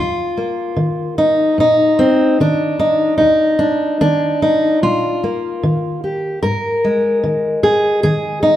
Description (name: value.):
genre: folk, solo fingerstyle acoustic guitar.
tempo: 74 BPM.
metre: 4/4.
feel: straight.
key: unclear.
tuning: A4 = 439 Hz.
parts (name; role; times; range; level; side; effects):
fingerpicked steel-string acoustic guitar; solo; 0.0-8.6 s; Eb2 to Bb4; -13 LUFS; equal; none.
room: moderate large studio reverb, RT60 1.2 s.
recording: band playing live in one room.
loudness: -13 LUFS.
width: side -12 dB against mid.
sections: 0.0-8.6 A section.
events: none.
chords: 0.0 Ebsus2; 6.4 Absus2.